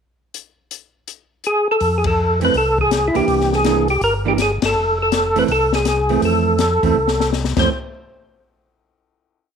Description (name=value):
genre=soul jazz organ trio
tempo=163 BPM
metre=4/4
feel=swing 65% on 8ths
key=F major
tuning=A4 = 442 Hz
part: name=open jazz drum kit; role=drums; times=0.3-7.6 s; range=crash cymbal, hi-hat, kick drum, ride cymbal, snare drum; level=-24 LUFS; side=left 7 dB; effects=none
part: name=percussive tonewheel organ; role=melody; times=1.5-7.7 s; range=E4 to C5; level=-17 LUFS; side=equal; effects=slow rotary speaker, chorus vibrato, slapback echo
part: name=mellow tonewheel organ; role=bass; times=1.8-7.7 s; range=F1 to F2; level=-22 LUFS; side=equal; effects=slow rotary speaker
part: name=hollow-body jazz guitar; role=accompaniment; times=2.4-7.7 s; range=E3 to D4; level=-21 LUFS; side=right 13 dB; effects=none
room=moderate spring reverb, RT60 1.3 s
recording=1960s-style stereo with parts hard left and right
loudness=-15 LUFS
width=side -7 dB against mid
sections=0.3-1.8 pickup bar; 1.8-7.7 A section; 7.7-9.2 final hit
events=band accent 2.0, 4.6; drum fill 7.0-7.7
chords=0.3 N.C.; 1.8 Fmaj7; 3.3 C9; 4.8 Fmaj7; 7.7 N.C.